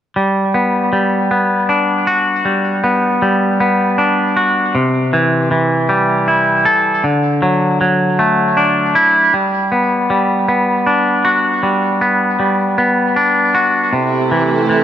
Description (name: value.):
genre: post-rock.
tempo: 78 BPM.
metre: 3/4.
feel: straight.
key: G major.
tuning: A4 = 436 Hz.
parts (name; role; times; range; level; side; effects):
twangy electric guitar; arpeggios; 0.2-14.8 s; C3 to A4; -12 LUFS; equal; tape echo.
rich studio string section; sustained chords; 13.9-14.8 s; C3 to E4; -17 LUFS; right 5 dB; none.
room: moderate plate reverb, RT60 2.7 s.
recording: none.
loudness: -12 LUFS.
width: side -10 dB against mid.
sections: 0.2-9.3 A section; 9.3-14.8 A section.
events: none.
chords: 0.2 Gmaj7; 4.7 C6; 7.0 Dadd9; 9.3 Gmaj7; 13.9 C6.